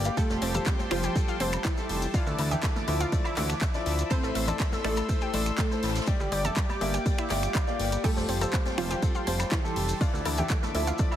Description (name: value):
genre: progressive house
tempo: 122 BPM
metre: 4/4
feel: straight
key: D minor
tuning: A4 = 440 Hz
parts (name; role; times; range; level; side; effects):
- wide unison pluck; melody; 0.0-11.2 s; E3 to C5; -34 LUFS; right 1 dB; ping-pong delay
- warm analog pad; sustained chords; 0.0-11.2 s; D3 to E6; -36 LUFS; right 1 dB; chorus, tremolo, sidechain pumping
- clear baby grand piano; stabs; 0.0-11.2 s; E3 to F5; -33 LUFS; left 3 dB; sidechain pumping, ping-pong delay
- fat analog bass; bass; 0.0-10.9 s; F1 to D2; -30 LUFS; equal; tube saturation, sidechain pumping
- maracas; percussion; 0.0-11.2 s; none; -43 LUFS; left 1 dB; none
- house drum kit; drums; 0.1-11.1 s; crash cymbal, finger snaps, handclaps, hi-hat; -35 LUFS; left 1 dB; overdrive
- woodblock and congas; percussion; 0.1-11.2 s; none; -39 LUFS; left 1 dB; sidechain pumping on perc
- analog pluck; arpeggios; 0.2-11.2 s; G3 to A4; -36 LUFS; equal; chorus, sidechain pumping, ping-pong delay
- electronic kick drum; drums; 0.2-11.1 s; none; -27 LUFS; equal; overdrive
- jazz brush drum kit; drums; 0.2-11.1 s; hi-hat, ride cymbal, snare drum; -41 LUFS; equal; sidechain pumping on cymbals, high-pass filter on cymbals, sidechain pumping on hats, high-pass filter on hats, high-pass filter on snare, high-pass filter on room
- swell; sound effects; 7.3-8.0 s; none; -37 LUFS; right 4 dB; none
room: light reverb, small room ambience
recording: heavily compressed radio sound, multiband compression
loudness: -25 LUFS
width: side -11 dB against mid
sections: 0.0-11.2 A section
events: swell 7.3-8.0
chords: 0.2 Fadd9; 2.1 Dmadd9; 4.1 Am; 6.1 Gm; 8.0 Fadd9; 10.0 Dmadd9